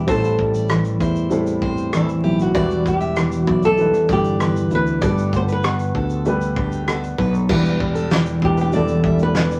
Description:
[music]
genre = acoustic pop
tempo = 97 BPM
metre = 4/4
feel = straight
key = E minor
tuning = A4 = 440 Hz
[part]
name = flamenco guitar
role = melody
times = 0.0-9.6 s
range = E4 to C5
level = -24 LUFS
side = equal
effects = none
[part]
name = dark upright piano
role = accompaniment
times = 0.0-9.6 s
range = G3 to D5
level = -29 LUFS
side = equal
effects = none
[part]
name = fingerpicked steel-string acoustic guitar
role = accompaniment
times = 0.0-9.6 s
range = E2 to A4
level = -24 LUFS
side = equal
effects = none
[part]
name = sustaining fretless electric bass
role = bass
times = 0.0-9.6 s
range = E1 to E2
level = -25 LUFS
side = equal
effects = none
[part]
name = picked plugged-in steel-string acoustic guitar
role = arpeggios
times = 0.1-9.2 s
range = G4 to E5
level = -33 LUFS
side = equal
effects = none
[part]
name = loose indie drum kit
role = drums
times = 0.1-9.6 s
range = crash cymbal, kick drum, rim click, shaker, snare drum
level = -27 LUFS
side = equal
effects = none
[sound]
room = moderate studio ambience, RT60 0.5 s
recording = vinyl crackle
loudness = -19 LUFS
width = mono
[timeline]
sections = 0.0-7.5 A section; 7.5-9.6 B section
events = none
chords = 0.1 Am7; 2.5 Em7; 5.0 Gadd9; 7.5 Em7

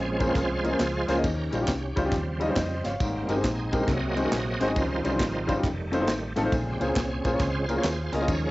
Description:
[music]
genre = uptempo gospel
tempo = 136 BPM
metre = 4/4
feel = swing 65% on 8ths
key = unclear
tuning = A4 = 442 Hz
[part]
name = clear baby grand piano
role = accompaniment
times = 0.0-8.5 s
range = Ab2 to F5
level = -27 LUFS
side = left 1 dB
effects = cassette tape
[part]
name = bright tonewheel organ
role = sustained chords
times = 0.0-8.5 s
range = Db3 to Eb5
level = -30 LUFS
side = right 2 dB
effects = slow rotary speaker, chorus vibrato, cassette tape
[part]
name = hollow-body short-scale fingered electric bass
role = bass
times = 0.0-8.5 s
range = F1 to F2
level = -32 LUFS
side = equal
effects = none
[part]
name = modern studio drum kit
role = drums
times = 0.2-8.4 s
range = kick drum, ride cymbal, snare drum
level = -31 LUFS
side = equal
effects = cassette tape
[part]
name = tambourine and handclaps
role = percussion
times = 0.2-8.4 s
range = none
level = -40 LUFS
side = right 1 dB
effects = none
[sound]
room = light reverb, small room ambience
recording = home recording on cassette, nothing above 7.8 kHz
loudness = -24 LUFS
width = side -18 dB against mid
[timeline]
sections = 0.0-8.5 A section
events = tonewheel organ solo 0.0-8.5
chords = 0.0 Bbm9; 1.2 Eb13; 3.0 Abmaj9; 3.9 Ab7/C; 4.8 Dbmaj9#11; 5.6 F7; 6.5 Bbm9

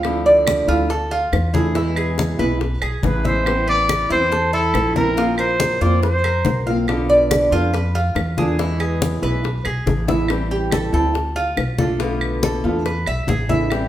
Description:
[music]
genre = latin, Cuban son and guajira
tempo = 141 BPM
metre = 4/4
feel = straight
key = A minor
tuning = A4 = 440 Hz
[part]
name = flamenco guitar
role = accompaniment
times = 0.0-13.9 s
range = B2 to F4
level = -22 LUFS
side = equal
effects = none
[part]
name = Cuban tres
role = arpeggios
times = 0.0-13.9 s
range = E4 to F5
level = -22 LUFS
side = right 1 dB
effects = none
[part]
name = upright bass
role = bass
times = 0.0-13.9 s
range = A1 to F2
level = -22 LUFS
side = equal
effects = none
[part]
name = bongos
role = percussion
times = 0.0-13.9 s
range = none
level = -28 LUFS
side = left 5 dB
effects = none
[part]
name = claves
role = percussion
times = 0.0-13.9 s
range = none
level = -30 LUFS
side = right 2 dB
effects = none
[part]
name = congas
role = percussion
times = 0.1-13.9 s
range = none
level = -25 LUFS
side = left 3 dB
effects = none
[part]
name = mellow trumpet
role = melody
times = 3.1-6.6 s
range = A4 to D5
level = -19 LUFS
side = equal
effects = none
[sound]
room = moderate large studio reverb, RT60 1.2 s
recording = band playing live in one room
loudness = -16 LUFS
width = side -12 dB against mid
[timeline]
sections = 0.0-10.3 A section; 10.3-13.9 B section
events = drum fill 9.9-10.3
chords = 0.0 Dmadd9; 1.8 E; 3.5 Amadd9; 5.2 Bbsus2; 6.9 Bdim; 8.6 E; 10.3 Am7; 11.1 Dm; 12.0 Bm7b5; 12.9 E7

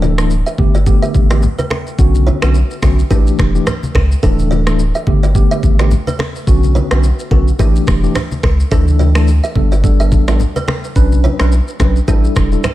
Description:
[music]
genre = afrobeats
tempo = 107 BPM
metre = 4/4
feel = swing 58% on 16ths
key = unclear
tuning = A4 = 440 Hz
[part]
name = mellow tine electric piano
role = accompaniment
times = 0.0-12.7 s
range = D3 to B4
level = -18 LUFS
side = equal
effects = medium stereo tremolo
[part]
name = buzzing kalimba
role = riff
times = 0.0-12.7 s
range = C#4 to E5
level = -23 LUFS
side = right 3 dB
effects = tape echo
[part]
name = warm sub bass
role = bass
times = 0.0-12.6 s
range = D1 to D2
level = -13 LUFS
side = equal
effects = none
[part]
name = afro-pop drum kit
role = drums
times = 0.0-12.7 s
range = finger snaps, kick drum, rim click, shaker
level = -16 LUFS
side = equal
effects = overdrive, vintage 12-bit sampler grit
[part]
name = congas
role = percussion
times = 0.0-12.7 s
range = none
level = -23 LUFS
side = left 2 dB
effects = none
[sound]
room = light reverb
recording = none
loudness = -11 LUFS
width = side -15 dB against mid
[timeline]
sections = 0.0-12.7 A section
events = none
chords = 0.0 Dsus2; 0.6 Gadd9; 2.0 Bmadd9; 3.1 A7sus4; 4.2 Dsus2; 5.1 Gadd9; 6.5 Bmadd9; 7.6 A7sus4; 8.7 Dsus2; 9.6 Gadd9; 11.0 Bmadd9; 12.1 A7sus4

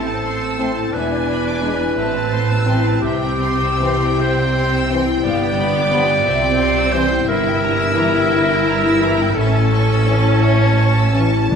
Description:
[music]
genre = classical, slow romantic movement for symphony orchestra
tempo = 49-60 BPM (dotted quarters)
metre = 6/8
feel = rubato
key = unclear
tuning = A4 = 440 Hz
[part]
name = clear studio violin section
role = melody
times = 0.0-11.6 s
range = E5 to A5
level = -28 LUFS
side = left 1 dB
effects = none
[part]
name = bright clarinet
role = second line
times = 0.0-11.6 s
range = F4 to D5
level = -20 LUFS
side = equal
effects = none
[part]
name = rich symphonic violin section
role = second line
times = 0.0-11.5 s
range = E5 to E6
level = -27 LUFS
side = equal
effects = none
[part]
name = clear symphonic viola section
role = accompaniment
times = 0.0-11.6 s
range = B3 to E4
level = -22 LUFS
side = right 2 dB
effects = none
[part]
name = concert harp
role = arpeggios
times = 0.0-11.6 s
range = E2 to C#5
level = -23 LUFS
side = left 10 dB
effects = none
[part]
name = clear symphonic double bass section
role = bass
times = 0.0-11.6 s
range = E1 to D2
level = -23 LUFS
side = right 3 dB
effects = none
[part]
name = warm symphonic cello section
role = bass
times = 0.0-11.6 s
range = D2 to C3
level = -21 LUFS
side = right 2 dB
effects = none
[part]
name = warm French horn section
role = sustained chords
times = 0.6-11.3 s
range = E3 to E4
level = -25 LUFS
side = left 2 dB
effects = none
[part]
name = timpani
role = percussion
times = 11.5-11.6 s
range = D3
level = -18 LUFS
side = equal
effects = none
[sound]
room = wet recital hall reverb, RT60 1.6 s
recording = minimal, uncompressed stereo recording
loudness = -14 LUFS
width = side -6 dB against mid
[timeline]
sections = 0.0-11.6 A section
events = none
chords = 0.0 Am; 0.9 E7; 2.0 Am; 3.0 C; 5.3 G7; 6.3 C; 7.3 Edim/G; 9.4 A

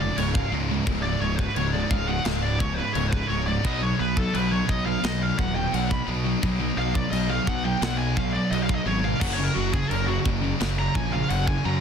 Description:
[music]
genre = heavy metal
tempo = 86 BPM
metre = 4/4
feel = straight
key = unclear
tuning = A4 = 441 Hz
[part]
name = high-gain lead guitar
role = melody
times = 0.0-11.8 s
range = F#4 to B5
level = -29 LUFS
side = equal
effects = distortion
[part]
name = high-gain distorted guitar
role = riff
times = 0.0-11.8 s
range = C#2 to B3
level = -31 LUFS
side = left 11 dB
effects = distortion
[part]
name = scooped high-gain guitar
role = riff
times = 0.0-11.8 s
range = C#2 to B3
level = -32 LUFS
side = equal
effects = distortion
[part]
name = sludgy distorted guitar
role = riff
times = 0.0-11.8 s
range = C#2 to B3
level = -30 LUFS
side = right 10 dB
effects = overdrive
[part]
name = fuzz fingered electric bass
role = bass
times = 0.0-11.8 s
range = C#1 to F#2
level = -28 LUFS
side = equal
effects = overdrive
[part]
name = tight metal drum kit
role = drums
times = 0.2-11.6 s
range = china cymbal, crash cymbal, kick drum, snare drum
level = -30 LUFS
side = left 1 dB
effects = soft clipping on kick
[sound]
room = studio reverb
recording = dense, heavily limited modern master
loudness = -22 LUFS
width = side -7 dB against mid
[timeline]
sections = 0.0-11.8 A section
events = lead electric guitar solo 0.0-11.8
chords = 0.0 C#5; 3.6 B5; 9.2 F#

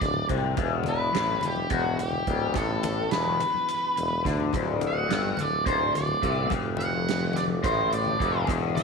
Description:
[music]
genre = psychedelic rock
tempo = 213 BPM (eighths)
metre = 7/8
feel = straight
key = D mixolydian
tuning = A4 = 442 Hz
[part]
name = octave-fuzz lead guitar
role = melody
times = 0.0-8.8 s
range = F#4 to F#5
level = -28 LUFS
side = equal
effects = distortion, slapback echo
[part]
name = mellow tonewheel organ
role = sustained chords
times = 0.0-8.8 s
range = D3 to B5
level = -38 LUFS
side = right 16 dB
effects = none
[part]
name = raw garage guitar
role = riff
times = 0.0-8.8 s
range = D2 to D3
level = -29 LUFS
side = left 12 dB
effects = overdrive, phaser
[part]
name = warm tuba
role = bass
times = 0.0-8.8 s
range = D1 to D2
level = -30 LUFS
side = right 2 dB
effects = none
[part]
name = soft-mallet drum kit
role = drums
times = 0.0-8.8 s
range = hi-hat, kick drum, snare drum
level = -32 LUFS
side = right 5 dB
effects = none
[part]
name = congas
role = percussion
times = 0.1-8.8 s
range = none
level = -36 LUFS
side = left 8 dB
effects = none
[sound]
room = small room ambience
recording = 1960s-style stereo with parts hard left and right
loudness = -24 LUFS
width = side -4 dB against mid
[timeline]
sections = 0.0-8.8 A section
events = drum fill 4.1-4.5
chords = 0.0 D; 0.6 E5; 4.5 D

